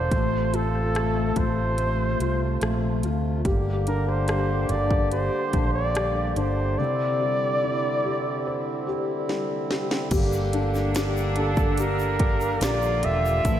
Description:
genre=pop ballad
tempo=72 BPM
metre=4/4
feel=straight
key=unclear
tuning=A4 = 440 Hz
part: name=warm flugelhorn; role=melody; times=0.0-13.6 s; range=A4 to E5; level=-27 LUFS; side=right 1 dB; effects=none
part: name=felt-muted upright piano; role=accompaniment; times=0.0-13.6 s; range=C3 to C5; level=-30 LUFS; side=left 4 dB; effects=ensemble chorus
part: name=pedal harmonium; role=sustained chords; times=0.0-13.6 s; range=C3 to A4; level=-30 LUFS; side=right 1 dB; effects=none
part: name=fretless electric bass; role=bass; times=0.0-13.6 s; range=E1 to D2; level=-26 LUFS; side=equal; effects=none
part: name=house drum kit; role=drums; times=0.1-13.6 s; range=crash cymbal, hi-hat, kick drum, rim click, snare drum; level=-27 LUFS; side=equal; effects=none
part: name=clear studio cello section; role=second line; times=10.1-13.6 s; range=D3 to F4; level=-33 LUFS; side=equal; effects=none
part: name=egg shaker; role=percussion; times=10.1-13.6 s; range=none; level=-45 LUFS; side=left 6 dB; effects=none
room=moderate lush hall reverb, RT60 2.4 s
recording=dreamy mix soaked in reverb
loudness=-22 LUFS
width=side -10 dB against mid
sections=0.0-10.1 A section; 10.1-13.6 B section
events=drum fill 9.3-10.1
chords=0.1 F/A; 3.5 Gm; 6.8 Cadd9; 10.1 Gm

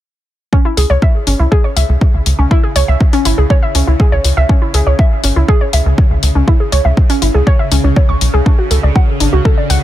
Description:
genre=melodic techno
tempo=121 BPM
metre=4/4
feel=straight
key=C# minor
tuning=A4 = 442 Hz
part: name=warbly dusty pluck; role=arpeggios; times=0.5-9.8 s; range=C#4 to C#6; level=-17 LUFS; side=equal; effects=chorus, sidechain pumping, dub echo
part: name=bowed-like drone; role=drone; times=1.8-9.8 s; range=C#3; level=-24 LUFS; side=right 2 dB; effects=built-in reverb, phaser, sidechain pumping
part: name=electronic kick drum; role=drums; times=0.5-9.6 s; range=none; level=-10 LUFS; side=equal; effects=overdrive
part: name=tight sequencer bass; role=bass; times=0.8-9.8 s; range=G#1 to C#2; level=-12 LUFS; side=equal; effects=sidechain pumping
part: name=electronic hi-hat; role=drums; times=0.8-9.8 s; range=none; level=-19 LUFS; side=left 6 dB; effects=overdrive
room=little or no reverb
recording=none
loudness=-10 LUFS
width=side -13 dB against mid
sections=0.5-9.8 A section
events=none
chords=0.5 C#m; 8.5 D (rootless)

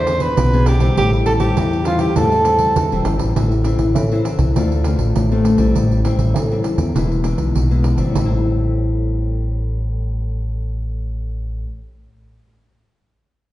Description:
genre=samba and choro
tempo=100 BPM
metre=4/4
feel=straight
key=A minor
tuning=A4 = 441 Hz
part: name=clear soprano saxophone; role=melody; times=0.0-3.0 s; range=F4 to C5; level=-18 LUFS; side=right 2 dB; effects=none
part: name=nylon-string guitar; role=accompaniment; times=0.0-11.8 s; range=A2 to G#4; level=-21 LUFS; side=left 3 dB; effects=none
part: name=fingered electric bass with an envelope filter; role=bass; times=0.0-11.6 s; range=E1 to A2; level=-18 LUFS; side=equal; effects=none
part: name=pandeiro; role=percussion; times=0.1-8.3 s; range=none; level=-22 LUFS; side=right 2 dB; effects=none
room=wet recital hall reverb, RT60 1.7 s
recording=heard from further back in the room, nothing above 10.3 kHz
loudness=-15 LUFS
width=side -15 dB against mid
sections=0.0-3.4 A section; 3.4-8.1 B section; 8.1-10.6 C section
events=none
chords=0.0 E7; 1.0 Am7; 3.4 Am; 4.6 Dm7; 5.8 Am7; 6.9 E; 8.1 Am7

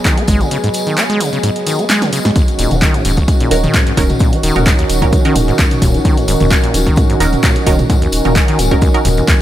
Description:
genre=acid house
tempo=130 BPM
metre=4/4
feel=swing 54% on 16ths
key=Eb minor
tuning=A4 = 440 Hz
part: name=warm analog pad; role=sustained chords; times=0.0-9.4 s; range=Eb3 to Ab4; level=-20 LUFS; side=equal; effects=wide subtle chorus, sidechain pumping
part: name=tambourine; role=percussion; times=0.0-9.4 s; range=none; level=-26 LUFS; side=left 4 dB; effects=none
part: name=warbly tape-like pad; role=texture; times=0.0-9.4 s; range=Eb4 to Cb6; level=-23 LUFS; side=right 1 dB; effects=chorus, built-in reverb, phaser, sidechain pumping
part: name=acid bass, saw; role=riff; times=0.1-9.3 s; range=Eb2 to Cb4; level=-19 LUFS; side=equal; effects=ping-pong delay
part: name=electronic kick drum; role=drums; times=0.1-9.4 s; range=none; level=-13 LUFS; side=equal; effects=overdrive
part: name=punchy analog drum machine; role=drums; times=0.1-9.4 s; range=handclaps, hi-hat, snare drum, toms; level=-18 LUFS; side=equal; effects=overdrive
part: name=warm sub bass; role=bass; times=0.3-9.2 s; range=Eb1 to Ab1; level=-18 LUFS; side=equal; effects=sidechain pumping
part: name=filtered dub chord stab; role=stabs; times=3.5-9.0 s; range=Db4 to Bb4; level=-20 LUFS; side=right 3 dB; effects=phaser, ping-pong delay
room=light reverb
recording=none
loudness=-11 LUFS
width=side -12 dB against mid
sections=0.0-9.4 A section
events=filter sweep on acid bass 0.0-9.4; break 0.5-2.4; drum fill 1.9-2.4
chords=0.0 Abm7; 2.4 Ebm7

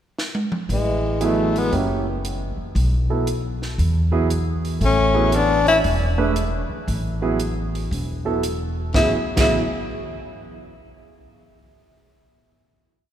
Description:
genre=jazz, small-group swing and bop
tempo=116 BPM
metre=4/4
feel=swing 67% on 8ths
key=A major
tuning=A4 = 436 Hz
part: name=compact cocktail drum kit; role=drums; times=0.2-9.4 s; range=crash cymbal, hi-hat, kick drum, snare drum, toms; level=-27 LUFS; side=right 1 dB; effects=none
part: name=warm tenor saxophone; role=melody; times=0.7-1.7, 4.8-5.8, 8.9-9.6 s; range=G#3 to E4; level=-22 LUFS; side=left 3 dB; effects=none
part: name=warm trombone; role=second line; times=0.7-5.8, 8.9-9.6 s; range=C#3 to C#4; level=-30 LUFS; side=right 1 dB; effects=none
part: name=upright bass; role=bass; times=0.7-9.6 s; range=E1 to E2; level=-22 LUFS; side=equal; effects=none
part: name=warm concert grand piano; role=accompaniment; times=1.2-9.6 s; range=F#3 to B4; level=-25 LUFS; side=right 4 dB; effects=none
room=wet church reverb, RT60 3.3 s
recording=recorded in a church or concert hall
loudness=-18 LUFS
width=side -10 dB against mid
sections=0.0-0.7 pickup bar; 0.7-8.9 A section; 8.9-11.0 final chord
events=drum fill 0.2-0.7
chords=0.0 N.C.; 0.7 Asus2; 1.7 F#7b9; 2.8 B7sus4; 3.8 Eadd9; 4.8 Asus2

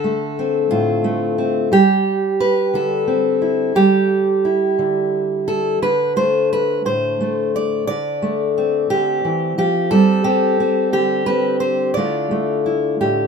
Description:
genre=folk, solo fingerstyle acoustic guitar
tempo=59 BPM (dotted quarters)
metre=6/8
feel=straight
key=D dorian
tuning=A4 = 436 Hz
part: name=fingerpicked steel-string acoustic guitar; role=solo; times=0.0-13.3 s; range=A2 to D5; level=-15 LUFS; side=equal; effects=none
room=moderate small room reverb, RT60 0.5 s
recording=minimal, uncompressed stereo recording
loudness=-15 LUFS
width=side -6 dB against mid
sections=0.0-13.3 A section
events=none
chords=0.0 Dm7; 1.7 Gsus4; 5.8 D7(no3); 9.9 Gsus4; 12.0 Dmadd9

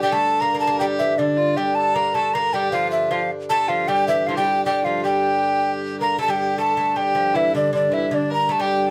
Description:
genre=medieval dance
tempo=156 BPM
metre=3/4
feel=straight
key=G dorian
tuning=A4 = 440 Hz
part: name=mellow hollow tenor recorder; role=melody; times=0.0-8.9 s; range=D5 to Bb5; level=-22 LUFS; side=equal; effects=none
part: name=lute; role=second line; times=0.0-8.9 s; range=D3 to Bb3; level=-29 LUFS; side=equal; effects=none
part: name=warm fiddle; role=second line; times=0.0-8.9 s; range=D4 to Bb4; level=-30 LUFS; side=equal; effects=none
part: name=hand-pumped harmonium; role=drone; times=0.0-8.9 s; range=G2 to D3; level=-30 LUFS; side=equal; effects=none
room=light reverb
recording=close, detailed microphones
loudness=-20 LUFS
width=mono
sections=0.0-6.2 A section; 6.2-8.9 B section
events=none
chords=none

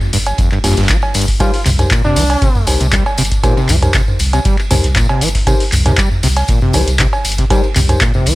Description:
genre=acid house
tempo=118 BPM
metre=4/4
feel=straight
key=unclear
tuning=A4 = 439 Hz
part: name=booming analog drum machine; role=drums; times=0.0-8.3 s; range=cowbell, handclaps, hi-hat, toms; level=-16 LUFS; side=equal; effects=studio reverb
part: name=tambourine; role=percussion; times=0.0-8.3 s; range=none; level=-25 LUFS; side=left 3 dB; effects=none
part: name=overdriven acid bass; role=riff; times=0.1-8.3 s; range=F2 to G3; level=-18 LUFS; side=equal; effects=wide subtle chorus
part: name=warm sub bass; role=bass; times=0.1-8.3 s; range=G1 to C2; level=-16 LUFS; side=equal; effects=sidechain pumping
part: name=damped 70s drum kit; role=drums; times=0.1-8.3 s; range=hi-hat, ride cymbal, snare drum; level=-29 LUFS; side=right 2 dB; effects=sidechain pumping on cymbals, high-pass filter on cymbals, studio reverb, sidechain pumping on hats, high-pass filter on hats, high-pass filter on snare, high-pass filter on room
part: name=electronic kick drum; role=drums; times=0.4-8.1 s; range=none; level=-16 LUFS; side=equal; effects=studio reverb
part: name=mellow tine electric piano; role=stabs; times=0.6-8.0 s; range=Bb3 to C5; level=-23 LUFS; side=left 2 dB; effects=medium stereo tremolo, tape echo
part: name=trumpet with bucket mute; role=melody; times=1.4-2.8 s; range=D4 to F4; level=-22 LUFS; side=right 1 dB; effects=tape echo
room=little or no reverb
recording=dry, gritty hardware recording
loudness=-11 LUFS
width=side -18 dB against mid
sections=0.0-8.3 A section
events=none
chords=0.0 G7(no3); 1.4 Cm7

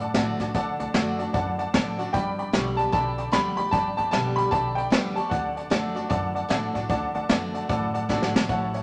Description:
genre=rockabilly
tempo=151 BPM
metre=4/4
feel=swing 63% on 8ths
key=D major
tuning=A4 = 440 Hz
part: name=honky-tonk upright piano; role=accompaniment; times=0.0-8.8 s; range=C#5 to C#6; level=-32 LUFS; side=equal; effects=none
part: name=picked steel-string acoustic guitar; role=accompaniment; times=0.0-8.8 s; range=G2 to G4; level=-33 LUFS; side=equal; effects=none
part: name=upright bass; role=bass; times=0.0-8.8 s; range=G1 to A2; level=-36 LUFS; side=equal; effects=none
part: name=jazz brush drum kit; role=drums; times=0.1-8.8 s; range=hi-hat, kick drum, snare drum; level=-29 LUFS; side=equal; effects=none
part: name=clear upright piano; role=melody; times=2.1-6.1, 8.5-8.8 s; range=F#5 to B5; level=-29 LUFS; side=equal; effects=none
room=moderate large studio reverb, RT60 1.2 s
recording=none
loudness=-25 LUFS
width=mono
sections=0.0-8.8 A section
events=drum fill 8.1-8.5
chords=0.0 D; 2.1 G; 5.3 D

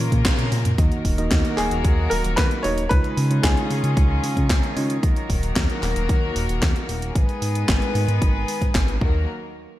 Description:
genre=italo disco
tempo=113 BPM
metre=4/4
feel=straight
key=Eb minor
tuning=A4 = 440 Hz
part: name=clear baby grand piano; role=melody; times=0.0-4.7 s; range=Ab4 to Db5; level=-27 LUFS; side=equal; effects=digital delay
part: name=rich chamber string section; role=sustained chords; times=0.0-9.3 s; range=Db3 to Cb5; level=-28 LUFS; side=left 1 dB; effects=none
part: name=bell-like tine electric piano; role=stabs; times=0.0-5.0 s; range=Bb2 to Eb5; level=-29 LUFS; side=right 2 dB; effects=ping-pong delay
part: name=chorused synth bass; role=bass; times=0.0-9.3 s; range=Eb1 to Db3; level=-23 LUFS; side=equal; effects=none
part: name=electronic kick drum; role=drums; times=0.1-9.1 s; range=none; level=-21 LUFS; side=equal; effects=none
part: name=house drum kit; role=drums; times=0.1-9.0 s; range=handclaps, hi-hat, snare drum, toms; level=-26 LUFS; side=equal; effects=gated reverb
room=light reverb, digital ambience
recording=none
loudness=-18 LUFS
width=side -15 dB against mid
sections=0.8-9.3 A section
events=drum fill 0.0-0.8; band accent 0.3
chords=0.0 Bbm; 0.8 Ebm; 2.9 Dbadd9; 5.0 Ebm; 7.2 Abm; 9.0 Ebm; 9.3 N.C.

